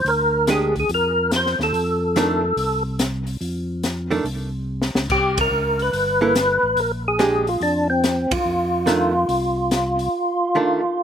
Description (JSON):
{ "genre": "soul jazz organ trio", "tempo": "143 BPM", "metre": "4/4", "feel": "swing 66% on 8ths", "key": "F mixolydian", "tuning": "A4 = 440 Hz", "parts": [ { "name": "percussive tonewheel organ", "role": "melody", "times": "0.0-11.0 s", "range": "C4 to C5", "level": "-19 LUFS", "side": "equal", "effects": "slow rotary speaker, chorus vibrato, slapback echo" }, { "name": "tonewheel organ", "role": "bass", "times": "0.0-10.1 s", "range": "G1 to F2", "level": "-26 LUFS", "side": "equal", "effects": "overdrive, slow rotary speaker" }, { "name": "open jazz drum kit", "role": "drums", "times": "0.1-10.1 s", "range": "crash cymbal, hi-hat, kick drum, ride cymbal, snare drum", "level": "-26 LUFS", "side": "left 1 dB", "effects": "none" }, { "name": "archtop guitar, miked and amplified", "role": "accompaniment", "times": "0.5-10.8 s", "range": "Eb3 to A4", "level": "-22 LUFS", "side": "right 3 dB", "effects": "slapback echo" } ], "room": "little or no reverb", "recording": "recorded outdoors, with no room sound", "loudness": "-18 LUFS", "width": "side -8 dB against mid", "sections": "0.0-11.0 A section", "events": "drum fill 4.7-5.1; band accent 5.3, 8.2", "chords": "0.0 Bb13; 1.7 F; 5.1 C5; 6.8 Bb13; 8.5 F6", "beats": "| 0.06 0.48 0.90 1.32 | 1.74 2.16 2.58 3.00 | 3.42 3.83 4.25 4.67 | 5.09 5.51 5.93 6.35 | 6.77 7.19 7.61 8.03 | 8.45 8.87 9.29 9.71 | 10.13 10.55 10.97" }